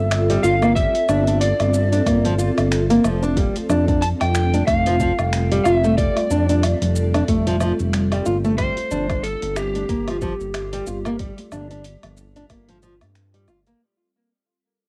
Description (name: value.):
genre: organic downtempo.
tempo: 92 BPM.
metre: 4/4.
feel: swing 57% on 16ths.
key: unclear.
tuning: A4 = 440 Hz.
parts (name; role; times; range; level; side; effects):
electric slide guitar; melody; 0.0-13.1 s; G4 to A5; -27 LUFS; equal; cassette tape, tape echo.
ethereal airy pad; sustained chords; 0.0-13.8 s; G3 to A4; -29 LUFS; equal; ensemble chorus, built-in reverb, sidechain pumping, cassette tape.
smooth synth bass; bass; 0.0-13.7 s; F1 to G2; -24 LUFS; equal; none.
dusty soul sampler-style drum kit; drums; 0.1-13.8 s; cabasa, finger snaps, hi-hat, woodblock; -31 LUFS; equal; studio reverb, cassette tape.
nylon-string guitar; arpeggios; 0.3-13.8 s; F3 to F4; -24 LUFS; equal; cassette tape, tape echo.
electronic kick drum; drums; 0.8-12.7 s; none; -27 LUFS; equal; studio reverb, cassette tape.
congas; percussion; 3.6-13.6 s; none; -36 LUFS; equal; none.
room: moderate booth ambience, RT60 0.2 s.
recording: home recording on cassette.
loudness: -19 LUFS.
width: mono.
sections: 0.0-13.8 A section.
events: fade-out 6.8-13.8.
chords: 0.0 Gm7; 3.4 F6; 8.6 G7(no3).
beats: 0.11 | 0.76 1.42 2.07 2.72 | 3.37 4.02 4.67 5.33 | 5.98 6.63 7.28 7.94 | 8.59 9.24 9.89 10.54 | 11.20 11.85 12.50 13.15.